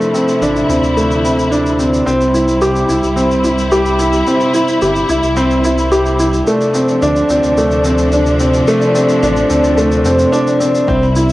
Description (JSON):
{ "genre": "piano and strings electronica", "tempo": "109 BPM", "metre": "4/4", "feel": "straight", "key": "unclear", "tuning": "A4 = 439 Hz", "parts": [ { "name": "warm studio string section", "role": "sustained chords", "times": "0.0-11.3 s", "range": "C3 to E4", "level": "-17 LUFS", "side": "left 1 dB", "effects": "cassette tape" }, { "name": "felt-muted upright piano", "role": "riff", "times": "0.0-11.3 s", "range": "A3 to G4", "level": "-12 LUFS", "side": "equal", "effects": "cassette tape, tape echo" }, { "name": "shaker", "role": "drums", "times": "0.0-11.3 s", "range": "none", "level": "-29 LUFS", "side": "equal", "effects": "overdrive, cassette tape" }, { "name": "dark detuned saw bass", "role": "bass", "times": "0.4-11.3 s", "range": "G1 to F2", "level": "-19 LUFS", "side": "equal", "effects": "sidechain pumping" }, { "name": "electronic kick drum", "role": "drums", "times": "10.9-11.0 s", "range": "none", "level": "-20 LUFS", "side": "equal", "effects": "cassette tape" } ], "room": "moderate spring reverb, RT60 2.0 s", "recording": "home recording on cassette", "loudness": "-11 LUFS", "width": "side -17 dB against mid", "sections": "0.0-10.9 A section", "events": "build-up 0.0-10.9", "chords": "0.0 Dm7; 2.1 C; 6.5 Dm7", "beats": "0.42 0.97 1.52 | 2.07 2.62 3.17 3.73 | 4.28 4.83 5.38 5.93 | 6.48 7.03 7.58 8.13 | 8.68 9.23 9.78 10.33 | 10.88" }